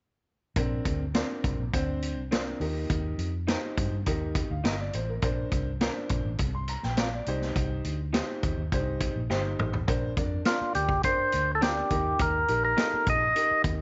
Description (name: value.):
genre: uptempo 1960s-style soul.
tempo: 103 BPM.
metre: 4/4.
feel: straight.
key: Bb major.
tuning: A4 = 441 Hz.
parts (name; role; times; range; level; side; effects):
clear upright piano; accompaniment; 0.6-13.8 s; C4 to C6; -36 LUFS; equal; none.
vintage muted fingered electric bass; bass; 0.6-13.8 s; G1 to G2; -34 LUFS; equal; none.
vintage drum kit; drums; 0.6-13.8 s; hi-hat, kick drum, snare drum, toms; -33 LUFS; equal; none.
electric guitar through a small old amp; stabs; 1.1-12.9 s; C4 to Eb5; -40 LUFS; equal; none.
percussive tonewheel organ; melody; 10.5-13.6 s; F4 to Eb5; -27 LUFS; equal; overdrive.
room: light reverb.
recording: nothing above 7.7 kHz.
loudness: -28 LUFS.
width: mono.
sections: 0.6-9.9 A section; 9.9-13.8 B section.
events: drum fill 9.3-9.9.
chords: 0.6 Bbadd9; 2.6 Eb; 5.2 Bbadd9; 7.3 Cm; 9.9 Bbadd9; 11.9 Eb.